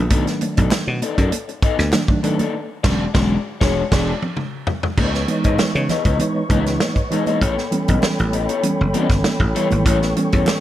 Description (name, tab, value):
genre	funk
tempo	98 BPM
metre	4/4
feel	straight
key	unclear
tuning	A4 = 441 Hz
part	electric guitar at the edge of break-up	accompaniment	0.0-10.5 s	G#3 to E5	-24 LUFS	left 7 dB	spring reverb
part	mellow reed electric piano	stabs	0.0-10.6 s	D3 to G#4	-22 LUFS	right 2 dB	fast tremolo
part	dry thumbed slap bass	bass	0.0-10.5 s	E1 to C#3	-20 LUFS	equal	none
part	warm soul drum kit	drums	0.1-10.6 s	crash cymbal, hi-hat, kick drum, snare drum, toms	-20 LUFS	equal	none
part	congas	percussion	0.1-10.6 s	none	-28 LUFS	right 4 dB	none
part	group handclap	percussion	0.7-2.1, 10.5-10.6 s	none	-32 LUFS	left 2 dB	none
part	mellow tonewheel organ	sustained chords	5.0-10.6 s	A4 to C#6	-26 LUFS	equal	chorus vibrato, stopped rotary speaker
room	light reverb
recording	none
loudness	-16 LUFS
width	side -13 dB against mid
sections	0.0-5.0 A section; 5.0-10.6 B section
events	band accent 2.5-5.0; drum fill 3.8-5.0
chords	0.0 B7#9; 2.5 E13; 5.0 C#m9; 7.4 A9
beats	| 0.11 0.71 1.32 1.93 | 2.54 3.15 3.76 4.37 | 4.97 5.58 6.20 6.80 | 7.42 8.03 8.64 9.25 | 9.86 10.47